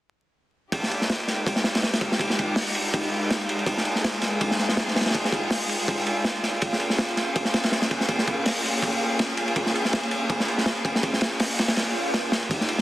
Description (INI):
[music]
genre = drum and bass, jungle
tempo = 163 BPM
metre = 4/4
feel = swing 55% on 16ths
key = F minor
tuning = A4 = 440 Hz
[part]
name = rich symphonic string section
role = sustained chords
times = 0.7-12.8 s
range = Ab3 to Ab4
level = -28 LUFS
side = equal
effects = none
[part]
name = crunchy breakbeat drum kit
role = drums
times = 0.7-12.8 s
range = hi-hat, kick drum, ride cymbal, snare drum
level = -23 LUFS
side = equal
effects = high-pass filter on kick, high-pass filter on cymbals, high-pass filter on hats, high-pass filter on snare, high-pass filter on room
[part]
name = swell and riser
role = sound effects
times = 11.9-12.8 s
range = none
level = -33 LUFS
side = equal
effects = none
[sound]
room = light reverb, small room ambience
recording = dense, heavily limited modern master, vinyl crackle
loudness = -22 LUFS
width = side -15 dB against mid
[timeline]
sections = 0.7-12.5 A section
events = swell 11.9-12.5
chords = 0.7 Fm9; 6.6 Bbm7